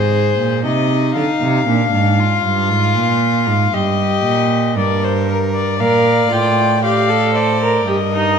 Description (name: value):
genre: classical, baroque-style fugue for string quartet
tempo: 58 BPM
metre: 4/4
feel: straight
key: Eb major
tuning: A4 = 440 Hz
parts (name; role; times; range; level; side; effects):
- dark violin; melody; 0.0-8.4 s; Bb4 to G5; -18 LUFS; left 9 dB; none
- warm violin; second line; 0.0-8.4 s; D4 to D5; -21 LUFS; left 2 dB; none
- warm cello; bass; 0.0-8.4 s; G2 to D3; -17 LUFS; right 5 dB; none
- rich viola; accompaniment; 5.8-8.4 s; Eb4 to Bb4; -16 LUFS; right 3 dB; none
room: wet recital hall reverb, RT60 1.8 s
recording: none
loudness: -13 LUFS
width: side -6 dB against mid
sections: 0.0-8.4 A section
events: none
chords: 0.0 Ab; 1.7 Bb7; 3.7 Eb/G; 5.8 Bb; 7.9 Eb/G